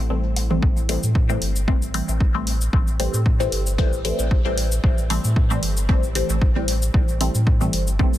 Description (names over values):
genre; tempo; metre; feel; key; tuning
dub techno; 114 BPM; 4/4; swing 54% on 16ths; A minor; A4 = 440 Hz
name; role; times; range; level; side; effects
warm sub bass; bass; 0.0-8.2 s; G1 to A2; -23 LUFS; equal; tube saturation, sidechain pumping
bubbling stepped-filter texture; texture; 0.0-0.6 s; E4; -46 LUFS; right 6 dB; none
filtered dub chord stab; stabs; 0.1-8.2 s; E3 to C4; -25 LUFS; left 1 dB; phaser, sidechain pumping, dub echo
electronic hi-hat and shaker; drums; 0.4-8.2 s; none; -28 LUFS; left 2 dB; none
electronic woodblock and toms; percussion; 0.4-0.6 s; none; -31 LUFS; equal; sidechain pumping on perc, sidechain pumping on toms, dub echo
electronic kick drum; drums; 0.6-8.1 s; none; -19 LUFS; equal; none
room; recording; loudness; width
little or no reverb; dense, heavily limited modern master; -18 LUFS; side -14 dB against mid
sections
0.6-8.2 A section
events
none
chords
0.0 Am7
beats
0.10 | 0.63 1.15 1.68 2.21 | 2.73 3.26 3.79 4.31 | 4.84 5.36 5.89 6.42 | 6.94 7.47 8.00